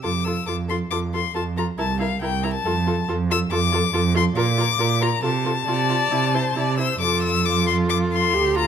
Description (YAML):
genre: quick classical-period movement for string quartet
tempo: 137 BPM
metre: 4/4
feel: straight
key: F major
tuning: A4 = 440 Hz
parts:
  - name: clear violin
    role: melody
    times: 0.0-8.7 s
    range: F5 to E6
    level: -23 LUFS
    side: left 9 dB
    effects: none
  - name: rich violin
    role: second line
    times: 0.0-8.7 s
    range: A4 to D5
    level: -29 LUFS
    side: left 3 dB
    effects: none
  - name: rich viola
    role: accompaniment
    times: 0.0-8.7 s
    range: E4 to G4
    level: -28 LUFS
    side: right 3 dB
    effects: none
  - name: rich cello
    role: bass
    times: 0.0-8.7 s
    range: C2 to C3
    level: -23 LUFS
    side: right 4 dB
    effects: none
room: moderate recital hall reverb, RT60 1.7 s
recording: close, detailed microphones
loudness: -19 LUFS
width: side -8 dB against mid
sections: 0.0-8.7 A section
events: none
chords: 0.0 F; 1.8 C7; 2.7 F; 4.4 Bb; 5.2 F/C; 6.1 C; 7.0 F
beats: | 0.03 0.48 0.91 1.35 | 1.79 2.22 2.66 3.09 | 3.52 3.94 4.37 4.80 | 5.24 5.68 6.13 6.57 | 7.02 7.46 7.90 8.35